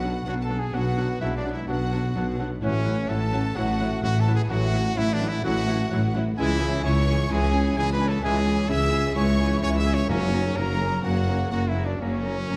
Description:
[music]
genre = cinematic, heroic adventure film score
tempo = 128 BPM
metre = 4/4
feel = straight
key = unclear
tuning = A4 = 440 Hz
[part]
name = warm symphonic violin section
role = melody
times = 0.0-12.6 s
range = C#5 to E6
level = -40 LUFS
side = equal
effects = none
[part]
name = dark symphonic violin section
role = second line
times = 0.0-12.6 s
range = A#3 to A#4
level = -40 LUFS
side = equal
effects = none
[part]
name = mellow clarinet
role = second line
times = 0.0-12.6 s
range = C#4 to E4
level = -39 LUFS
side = equal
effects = none
[part]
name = silver concert flute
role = second line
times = 0.0-12.6 s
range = C#5 to E6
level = -39 LUFS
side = equal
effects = none
[part]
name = warm oboe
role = second line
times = 0.0-12.6 s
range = F#5 to A#5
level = -42 LUFS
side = equal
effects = none
[part]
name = rich symphonic viola section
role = accompaniment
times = 0.0-12.6 s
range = C#3 to A#3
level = -37 LUFS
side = equal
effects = none
[part]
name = mellow French horn section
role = sustained chords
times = 0.0-12.6 s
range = E3 to G#4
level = -37 LUFS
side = equal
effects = none
[part]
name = warm trumpet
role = stabs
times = 0.0-12.6 s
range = C#4 to E5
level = -32 LUFS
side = equal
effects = none
[part]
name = mellow tuba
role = bass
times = 0.0-12.6 s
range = F#1 to C#2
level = -32 LUFS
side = equal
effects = none
[part]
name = rich studio cello section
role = bass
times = 0.0-12.6 s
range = C#2 to B2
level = -31 LUFS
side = equal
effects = none
[part]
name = warm symphonic double bass section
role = bass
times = 0.0-12.6 s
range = F#1 to C#2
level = -30 LUFS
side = equal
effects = none
[part]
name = dark trombone section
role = sustained chords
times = 0.7-12.2 s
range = E3 to B3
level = -39 LUFS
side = equal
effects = none
[part]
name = timpani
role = percussion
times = 10.1-10.8 s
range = F#2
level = -39 LUFS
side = equal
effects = none
[sound]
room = moderate scoring stage reverb, RT60 1.9 s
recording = none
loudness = -24 LUFS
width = mono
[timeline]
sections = 0.0-12.6 A section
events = none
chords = 0.0 Bm; 2.6 F#m7/A; 6.4 C#m; 10.1 F#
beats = 0.28 | 0.75 1.22 1.69 2.16 | 2.63 3.10 3.57 4.04 | 4.51 4.98 5.45 5.92 | 6.38 6.84 7.31 7.77 | 8.24 8.70 9.16 9.63 | 10.10 10.57 11.04 11.52 | 12.01 12.50

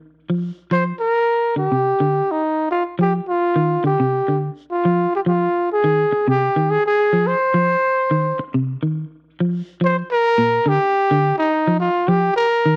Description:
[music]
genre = afrobeat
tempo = 105 BPM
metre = 4/4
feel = swing 55% on 16ths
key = F dorian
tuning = A4 = 441 Hz
[part]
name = clean electric guitar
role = arpeggios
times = 0.3-12.8 s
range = Bb2 to F3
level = -22 LUFS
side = equal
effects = spring reverb
[part]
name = breathy trumpet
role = melody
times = 0.7-12.8 s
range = Eb4 to C5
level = -19 LUFS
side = equal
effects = slapback echo
[sound]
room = little or no reverb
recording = dry, close 1970s-style studio recording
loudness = -19 LUFS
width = mono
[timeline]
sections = 0.0-12.8 A section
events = none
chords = 0.0 F7(no3); 9.8 Gm7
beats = 0.14 | 0.71 1.28 1.85 2.42 | 2.99 3.56 4.13 4.70 | 5.27 5.83 6.40 6.97 | 7.54 8.11 8.68 9.25 | 9.82 10.39 10.96 11.52 | 12.09 12.66

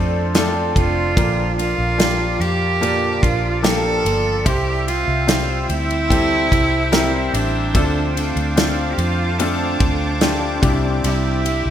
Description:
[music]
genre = pop ballad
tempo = 73 BPM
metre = 4/4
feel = straight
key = unclear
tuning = A4 = 440 Hz
[part]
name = clear grand piano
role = accompaniment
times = 0.0-11.7 s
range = Bb2 to E5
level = -23 LUFS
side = left 4 dB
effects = none
[part]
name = sweeping resonant pad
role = sustained chords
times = 0.0-11.7 s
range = Bb3 to E6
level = -28 LUFS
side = equal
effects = chorus, phaser
[part]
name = flamenco guitar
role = arpeggios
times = 0.0-11.7 s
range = Bb2 to Bb4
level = -29 LUFS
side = right 7 dB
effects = ensemble chorus, ping-pong delay
[part]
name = vintage muted fingered electric bass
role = bass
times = 0.0-11.7 s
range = F1 to F2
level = -22 LUFS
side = equal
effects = none
[part]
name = natural country drum kit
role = drums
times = 0.3-11.6 s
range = kick drum, ride cymbal, snare drum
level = -21 LUFS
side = equal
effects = gated reverb
[part]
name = rich cello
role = melody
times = 0.8-11.7 s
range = D4 to A4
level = -21 LUFS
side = right 2 dB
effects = none
[sound]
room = light reverb, studio ambience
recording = bright 1980s-style digital production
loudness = -16 LUFS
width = side -10 dB against mid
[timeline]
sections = 0.0-11.7 A section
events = none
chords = 0.0 F6; 1.2 Bb; 4.5 C; 7.7 Dm7; 10.6 Cadd9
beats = 0.35 | 1.17 1.99 2.82 3.64 | 4.46 5.28 6.10 6.92 | 7.75 8.57 9.39 10.21 | 11.04

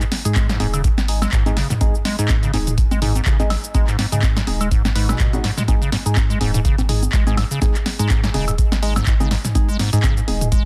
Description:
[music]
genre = acid house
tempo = 124 BPM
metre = 4/4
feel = swing 56% on 16ths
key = G# minor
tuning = A4 = 440 Hz
[part]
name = acid bass, square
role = riff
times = 0.0-10.6 s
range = G#2 to G#3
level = -27 LUFS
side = equal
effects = sidechain pumping
[part]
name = punchy analog drum machine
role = drums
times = 0.0-10.6 s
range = congas, handclaps, hi-hat, shaker, snare drum, toms, woodblock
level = -26 LUFS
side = equal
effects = none
[part]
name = percussive organ stab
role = stabs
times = 0.3-10.5 s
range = G#3 to B4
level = -30 LUFS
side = equal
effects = chorus, phaser, dub echo
[part]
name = warm sub bass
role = bass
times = 0.3-10.6 s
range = D#1 to G#2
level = -25 LUFS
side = equal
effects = sidechain pumping
[part]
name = electronic kick drum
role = drums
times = 0.4-10.6 s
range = none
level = -21 LUFS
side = equal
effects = none
[sound]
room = little or no reverb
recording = dense, heavily limited modern master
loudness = -18 LUFS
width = mono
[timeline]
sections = 0.0-10.7 A section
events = none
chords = 0.0 G#5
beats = 0.36 0.84 1.33 | 1.81 2.29 2.78 3.26 | 3.75 4.23 4.71 5.20 | 5.68 6.16 6.65 7.13 | 7.62 8.10 8.58 9.07 | 9.55 10.04 10.52

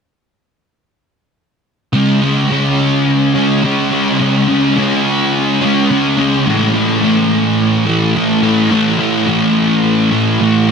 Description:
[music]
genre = rock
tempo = 106 BPM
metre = 4/4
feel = straight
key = C# minor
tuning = A4 = 441 Hz
[part]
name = fuzz guitar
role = solo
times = 1.9-10.7 s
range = A2 to C#4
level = -11 LUFS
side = equal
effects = distortion, analog chorus, tape echo
[sound]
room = wet huge ambient reverb, RT60 6.4 s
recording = dreamy mix soaked in reverb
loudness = -11 LUFS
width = side -6 dB against mid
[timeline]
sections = 1.9-10.7 A section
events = none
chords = 1.9 C#5; 6.5 A5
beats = | 1.93 2.50 3.07 3.63 | 4.20 4.76 5.33 5.89 | 6.46 7.02 7.58 8.15 | 8.71 9.28 9.84 10.40

